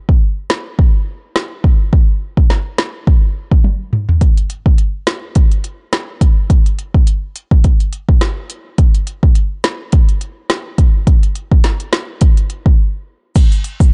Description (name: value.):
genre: dancehall.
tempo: 105 BPM.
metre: 4/4.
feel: swing 56% on 16ths.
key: none.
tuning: none.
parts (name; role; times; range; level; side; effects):
afro-pop drum kit; drums; 0.1-13.9 s; crash cymbal, hi-hat, kick drum, rim click, snare drum, toms; -13 LUFS; equal; none.
egg shaker; percussion; 13.4-13.9 s; none; -37 LUFS; equal; none.
room: little or no reverb.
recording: dark, warm production, nothing above 10.4 kHz.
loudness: -14 LUFS.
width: mono.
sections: 0.0-4.2 A section; 4.2-13.4 B section.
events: drum fill 3.6-4.2; break 12.8-13.4.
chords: none.